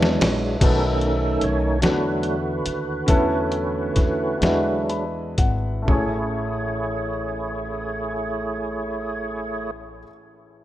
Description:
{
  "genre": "slow gospel",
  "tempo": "39-50 BPM (dotted quarters)",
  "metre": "6/8",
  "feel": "straight",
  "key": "A major",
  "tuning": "A4 = 442 Hz",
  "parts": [
    { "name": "dark upright piano", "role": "accompaniment", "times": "0.0-10.6 s", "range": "A1 to B5", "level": "-26 LUFS", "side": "left 1 dB", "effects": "none" },
    { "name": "percussive tonewheel organ", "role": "sustained chords", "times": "0.0-9.7 s", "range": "D3 to C#5", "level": "-25 LUFS", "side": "right 2 dB", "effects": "fast rotary speaker, overdrive, chorus vibrato" },
    { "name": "upright bass", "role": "bass", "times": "0.0-10.0 s", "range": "G#1 to E2", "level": "-28 LUFS", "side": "left 1 dB", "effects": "none" },
    { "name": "trip hop sampler-style drum kit", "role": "drums", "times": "0.0-6.1 s", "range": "crash cymbal, hi-hat, kick drum, ride cymbal, snare drum, toms", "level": "-21 LUFS", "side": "equal", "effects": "none" }
  ],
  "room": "light reverb",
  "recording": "rough home demo mix",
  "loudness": "-20 LUFS",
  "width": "side -13 dB against mid",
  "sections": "0.6-5.9 A section; 5.9-8.9 B section",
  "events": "drum fill 0.0-0.6; slowing down 0.6-5.9; tonewheel organ solo 0.6-5.9; upright piano fill 4.4-5.9",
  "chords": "0.0 E9; 0.6 B9; 1.8 E9sus4; 3.1 A/E; 4.4 E9; 5.9 Amaj7"
}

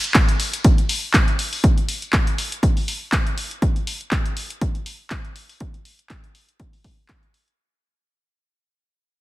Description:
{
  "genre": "house",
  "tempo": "121 BPM",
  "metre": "4/4",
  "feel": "swing 55% on 16ths",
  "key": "none",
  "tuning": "none",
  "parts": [
    { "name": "punchy analog drum machine", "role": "drums", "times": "0.0-7.6 s", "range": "handclaps, hi-hat", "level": "-24 LUFS", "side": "equal", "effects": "sidechain pumping on hats, sidechain pumping on perc, sidechain pumping on cymbals" },
    { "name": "tambourine", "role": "percussion", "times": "0.0-7.6 s", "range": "none", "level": "-35 LUFS", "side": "left 7 dB", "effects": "none" },
    { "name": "electronic kick drum", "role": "drums", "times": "0.1-7.2 s", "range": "none", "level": "-18 LUFS", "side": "equal", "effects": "none" }
  ],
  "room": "digital ambience",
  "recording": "none",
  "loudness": "-18 LUFS",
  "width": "side -18 dB against mid",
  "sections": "0.0-7.6 A section",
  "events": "fade-out 0.0-7.6",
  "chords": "none"
}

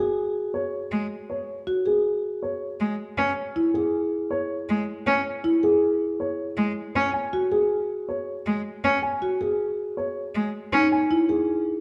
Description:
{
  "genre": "classical, minimalist pattern music",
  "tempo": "159 BPM",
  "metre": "5/4",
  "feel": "straight",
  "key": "unclear",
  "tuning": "A4 = 441 Hz",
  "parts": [
    { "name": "dark baby grand piano", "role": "melody", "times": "0.0-11.5 s", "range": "G#4 to G#5", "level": "-33 LUFS", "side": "equal", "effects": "none" },
    { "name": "marimba with soft mallets", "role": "arpeggios", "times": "0.0-11.5 s", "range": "D#4 to G#4", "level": "-27 LUFS", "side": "equal", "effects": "none" },
    { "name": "clear cello", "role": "accompaniment", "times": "0.9-10.9 s", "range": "G#3 to C#4", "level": "-27 LUFS", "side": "equal", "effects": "none" }
  ],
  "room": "moderate scoring stage reverb, RT60 1.9 s",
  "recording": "dark, warm production",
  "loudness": "-25 LUFS",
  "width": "mono",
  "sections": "0.0-11.8 A section",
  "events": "none",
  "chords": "0.0 G#7sus4; 2.4 C#m; 6.2 G#7sus4; 10.0 C#m"
}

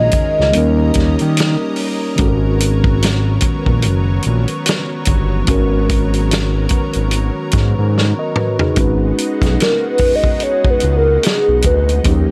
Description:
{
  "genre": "R&B, neo-soul",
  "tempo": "73 BPM",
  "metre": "4/4",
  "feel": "swing 58% on 16ths",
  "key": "G# minor",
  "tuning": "A4 = 440 Hz",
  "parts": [
    { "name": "hollow clarinet-like synth lead", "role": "melody", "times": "0.0-1.8, 9.6-12.0 s", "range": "G#4 to D#5", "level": "-18 LUFS", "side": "equal", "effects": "chorus" },
    { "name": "mellow tine electric piano", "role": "accompaniment", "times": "0.0-12.3 s", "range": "D#3 to D#5", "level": "-22 LUFS", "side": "equal", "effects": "none" },
    { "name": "lush unison pad", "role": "sustained chords", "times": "0.0-12.3 s", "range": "F#3 to G#5", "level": "-28 LUFS", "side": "equal", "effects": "chorus" },
    { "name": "smooth synth bass", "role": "bass", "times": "0.0-12.3 s", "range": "F#1 to D#3", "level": "-18 LUFS", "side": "equal", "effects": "none" },
    { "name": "warm soul drum kit", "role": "drums", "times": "0.1-12.3 s", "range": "hi-hat, kick drum, snare drum, toms", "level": "-20 LUFS", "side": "equal", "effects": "none" }
  ],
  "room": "little or no reverb",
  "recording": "none",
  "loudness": "-15 LUFS",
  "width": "mono",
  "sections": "0.0-8.8 A section; 8.8-12.3 B section",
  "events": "drum fill 7.9-8.8; soft synth lead solo 8.8-12.3",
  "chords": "0.0 F#69/A#; 0.5 D#7; 2.2 G#m11; 8.8 G#m7"
}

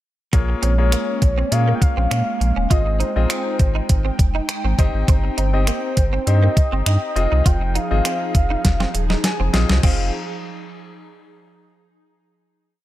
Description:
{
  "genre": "dance-pop",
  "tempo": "101 BPM",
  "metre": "4/4",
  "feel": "straight",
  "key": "F minor",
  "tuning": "A4 = 442 Hz",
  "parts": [
    { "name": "clear concert grand piano", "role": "accompaniment", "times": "0.3-10.1 s", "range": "Bb3 to Ab5", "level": "-28 LUFS", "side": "left 7 dB", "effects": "sidechain pumping" },
    { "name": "airy breathy pad", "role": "sustained chords", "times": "0.3-10.1 s", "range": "F3 to G5", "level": "-29 LUFS", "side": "right 2 dB", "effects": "chorus, sidechain pumping" },
    { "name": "direct-recorded clean electric guitar", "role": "riff", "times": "0.3-10.0 s", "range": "Bb3 to F4", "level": "-30 LUFS", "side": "right 7 dB", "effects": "ensemble chorus" },
    { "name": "saturated sub bass", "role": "bass", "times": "0.3-10.1 s", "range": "Eb1 to Bb2", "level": "-19 LUFS", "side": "equal", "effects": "sidechain pumping" },
    { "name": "clean 12-bit digital drum machine", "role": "drums", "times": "0.3-10.0 s", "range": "crash cymbal, finger snaps, hi-hat, kick drum, snare drum", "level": "-19 LUFS", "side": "equal", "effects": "none" },
    { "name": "warm velvety synth lead", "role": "melody", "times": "0.6-10.1 s", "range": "C5 to G5", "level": "-26 LUFS", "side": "left 1 dB", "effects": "chorus, digital delay" }
  ],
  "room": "little or no reverb",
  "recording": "none",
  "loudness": "-16 LUFS",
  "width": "side -14 dB against mid",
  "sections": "0.3-9.8 chorus; 9.8-12.2 final chord",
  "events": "drum fill 8.6-9.8; grand piano fill 8.9-9.8",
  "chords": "0.3 Bbm7; 2.7 Fm7/Ab; 4.8 Cm/G; 7.2 Fm7"
}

